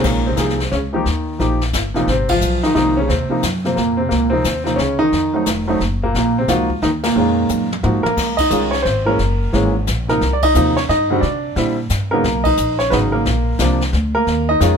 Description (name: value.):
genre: jazz piano trio.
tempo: 177 BPM.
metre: 3/4.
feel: swing 64% on 8ths.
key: Bb minor.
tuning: A4 = 440 Hz.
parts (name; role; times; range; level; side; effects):
clear grand piano; melody; 0.0-14.8 s; Bb2 to Eb5; -16 LUFS; right 1 dB; none.
upright bass; bass; 0.0-14.8 s; F1 to C3; -20 LUFS; equal; none.
jazz brush drum kit; drums; 0.0-14.8 s; brushed snare drum, crash cymbal, hi-hat, kick drum, ride cymbal, snare drum, toms; -25 LUFS; left 3 dB; none.
room: light reverb.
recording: minimal, uncompressed stereo recording.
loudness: -15 LUFS.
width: side -6 dB against mid.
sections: 0.0-8.2 A section; 8.2-14.8 B section.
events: band accent 2.2, 7.0, 8.3, 10.4, 12.4; drum fill 7.5-8.2.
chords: 0.0 Bbm11; 1.1 Ebadd9; 2.1 Ab69; 3.1 Ebm69; 4.1 Dbmaj9; 5.1 F7b9; 6.1 Bbm11; 8.2 Bbm9; 9.2 Gbadd9; 10.2 Cm7; 11.2 C7sus2; 12.2 Bmaj7; 13.3 Bb; 14.3 Eb7sus2.